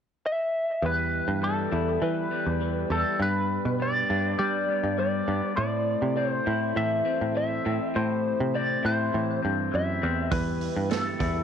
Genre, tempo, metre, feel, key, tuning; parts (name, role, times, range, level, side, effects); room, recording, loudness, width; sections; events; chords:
psychedelic rock; 101 BPM; 4/4; straight; A minor; A4 = 440 Hz
lightly driven lead guitar; melody; 0.3-11.4 s; A4 to E5; -28 LUFS; equal; wah, tape echo
combo organ; sustained chords; 0.8-11.4 s; G3 to C5; -34 LUFS; right 15 dB
electric guitar through a small old amp; riff; 0.8-11.4 s; E2 to E4; -31 LUFS; left 12 dB; phaser
picked electric bass; bass; 0.8-11.4 s; E2 to G3; -29 LUFS; right 1 dB
vintage drum kit; drums; 10.3-11.3 s; hi-hat, kick drum, snare drum; -31 LUFS; right 5 dB
light reverb, studio reverb; 1960s-style stereo with parts hard left and right; -24 LUFS; side -8 dB against mid
0.8-11.4 A section
0.0 N.C.; 0.8 Em; 3.2 G; 5.6 Am; 10.3 Em